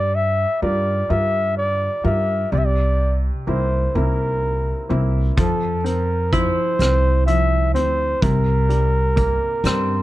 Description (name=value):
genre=acoustic folk-pop ballad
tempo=42 BPM (dotted quarters)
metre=6/8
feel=straight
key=unclear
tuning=A4 = 438 Hz
part: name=breathy flugelhorn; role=melody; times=0.0-10.0 s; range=A4 to E5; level=-21 LUFS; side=equal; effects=none
part: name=bright baby grand piano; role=accompaniment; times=0.0-10.0 s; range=C3 to Bb4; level=-26 LUFS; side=equal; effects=none
part: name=upright bass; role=bass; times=0.0-10.0 s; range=C2 to G2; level=-20 LUFS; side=equal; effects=none
part: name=vintage brush drum kit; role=drums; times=5.4-9.9 s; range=hi-hat, kick drum, rim click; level=-23 LUFS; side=equal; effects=none
part: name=concert harp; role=arpeggios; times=6.3-10.0 s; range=C4 to E4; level=-26 LUFS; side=right 1 dB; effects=none
room=little or no reverb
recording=dark, warm production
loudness=-17 LUFS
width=side -16 dB against mid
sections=0.0-5.4 A section; 5.4-10.0 B section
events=none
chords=0.0 Gm7; 2.5 C7; 5.4 F5; 8.2 C7